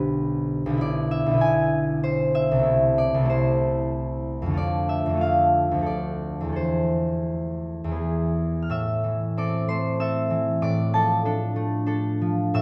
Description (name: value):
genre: classical, solo harp piece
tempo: 83-98 BPM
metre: 3/4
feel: rubato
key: A minor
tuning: A4 = 440 Hz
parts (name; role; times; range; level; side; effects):
- concert harp; solo; 0.0-12.6 s; B1 to F6; -24 LUFS; equal; none
room: wet recital hall reverb, RT60 1.4 s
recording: none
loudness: -24 LUFS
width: mono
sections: 0.0-8.7 A section; 8.7-12.6 B section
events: none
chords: 0.0 G/B; 0.8 E7/B; 2.7 Am/C; 4.6 Dm/F; 6.6 Am/E; 8.0 E; 8.7 Am; 10.6 Dm/A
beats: 0.17 | 0.80 1.41 2.03 | 2.66 3.30 3.94 | 4.57 5.21 5.87 | 6.56 7.28 7.99 | 8.70 9.37 10.00 | 10.62 11.25 11.87 | 12.54